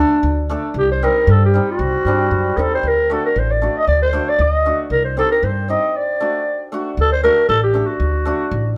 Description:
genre	klezmer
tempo	116 BPM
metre	2/4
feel	straight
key	D phrygian dominant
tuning	A4 = 443 Hz
part	growling clarinet	melody	0.0-8.8 s	D4 to Eb5	-19 LUFS	equal	none
part	hammered dulcimer	accompaniment	0.0-8.4 s	G3 to A4	-26 LUFS	equal	none
part	upright bass	bass	0.0-8.8 s	A1 to G2	-21 LUFS	equal	none
room	light reverb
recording	band playing live in one room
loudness	-17 LUFS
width	mono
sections	0.0-7.0 A section; 7.0-8.8 A section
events	break 5.9-7.0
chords	0.0 D5; 0.8 Cm; 2.8 D; 4.9 Cm; 5.9 D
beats	0.24 | 0.76 1.28 | 1.80 2.32 | 2.84 3.36 | 3.88 4.40 | 4.92 5.43 | 5.95 6.46 | 6.98 7.49 | 8.00 8.51

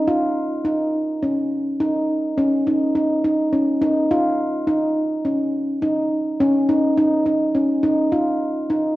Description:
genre	contemporary instrumental, contemporary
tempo	209 BPM (eighths)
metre	7/8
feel	straight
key	unclear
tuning	A4 = 440 Hz
part	handpan	solo	0.0-9.0 s	Db4 to F4	-18 LUFS	equal	none
room	wet recital hall reverb, RT60 1.6 s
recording	dark, warm production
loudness	-18 LUFS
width	side -17 dB against mid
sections	0.0-9.0 A section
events	none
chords	none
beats	0.07 0.36 0.65 0.94 1.23 1.51 | 1.80 2.09 2.38 2.66 2.95 3.24 3.52 | 3.81 4.10 4.39 4.67 4.96 5.25 5.54 | 5.82 6.11 6.40 6.68 6.97 7.26 7.55 | 7.83 8.12 8.41 8.70

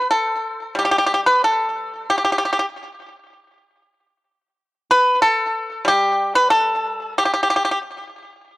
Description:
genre	chinese traditional, Chinese solo plucked strings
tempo	87-97 BPM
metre	4/4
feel	rubato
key	unclear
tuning	A4 = 445 Hz
part	pipa	solo	0.0-7.8 s	G3 to B4	-16 LUFS	equal	tape echo
room	light reverb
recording	home recording on cassette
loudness	-16 LUFS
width	side -18 dB against mid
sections	0.0-8.6 A section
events	none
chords	none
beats	0.10 0.76 1.41 | 2.07 2.71 3.34 3.97 | 4.60 5.24 5.88 6.52 | 7.18

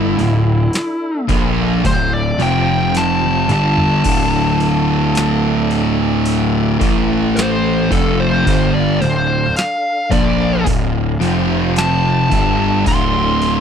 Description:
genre	stoner and doom metal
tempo	54 BPM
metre	4/4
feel	straight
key	D minor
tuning	A4 = 442 Hz
part	fuzz lead guitar	melody	0.0-13.6 s	E4 to C6	-19 LUFS	left 1 dB	wah, distortion, slapback echo
part	mellow tonewheel organ	sustained chords	0.0-13.6 s	A3 to G5	-28 LUFS	equal	chorus vibrato, fast rotary speaker
part	thick fuzz guitar	riff	0.0-13.6 s	D2 to Bb3	-19 LUFS	left 12 dB	distortion
part	thick fuzz guitar	riff	0.0-13.6 s	D2 to Bb3	-18 LUFS	right 12 dB	distortion
part	fuzz picked electric bass	bass	0.0-13.6 s	D1 to Bb1	-20 LUFS	equal	overdrive
part	booming analog drum machine	drums	0.2-13.6 s	crash cymbal, hi-hat, kick drum, snare drum, toms	-21 LUFS	equal	none
room	little or no reverb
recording	dry, close 1970s-style studio recording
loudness	-13 LUFS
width	side -8 dB against mid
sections	0.0-13.6 A section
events	lead electric guitar solo 0.0-13.6; drum fill 3.0-4.1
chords	0.0 Dm; 2.4 F5; 3.5 D5; 6.8 A5; 7.9 Dm; 11.2 F5; 12.3 D5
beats	0.74 1.84 2.95 | 4.05 5.16 6.26 7.36 | 8.47 9.57 10.67 11.77 | 12.87

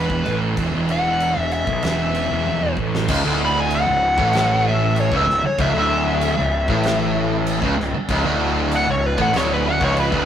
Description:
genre	stoner and doom metal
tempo	96 BPM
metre	4/4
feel	straight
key	C# minor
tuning	A4 = 439 Hz
part	fuzz lead guitar	melody	0.0-10.3 s	B4 to B5	-21 LUFS	left 2 dB	wah, distortion
part	thick fuzz guitar	riff	0.0-10.3 s	C#2 to B2	-28 LUFS	left 4 dB	distortion
part	thick fuzz guitar	riff	0.0-10.3 s	C#2 to B2	-25 LUFS	right 6 dB	distortion
part	fuzz picked electric bass	bass	0.0-10.3 s	C#1 to B1	-24 LUFS	equal	overdrive
part	oversized low-tuned drum kit	drums	0.1-10.3 s	crash cymbal, kick drum, snare drum, toms	-27 LUFS	equal	none
part	distorted electric guitar	riff	3.1-10.3 s	C#2 to A2	-23 LUFS	equal	overdrive
room	moderate stone room reverb, RT60 1.1 s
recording	rough rehearsal-room recording, tube saturation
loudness	-17 LUFS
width	side -9 dB against mid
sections	0.0-3.1 A section; 3.1-10.3 B section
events	drum fill 2.5-3.1; lead electric guitar solo 3.1-10.3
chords	0.0 E5; 3.1 C#m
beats	| 0.57 1.20 1.83 2.45 | 3.08 3.71 4.33 4.96 | 5.59 6.21 6.84 7.46 | 8.09 8.72 9.34 9.97

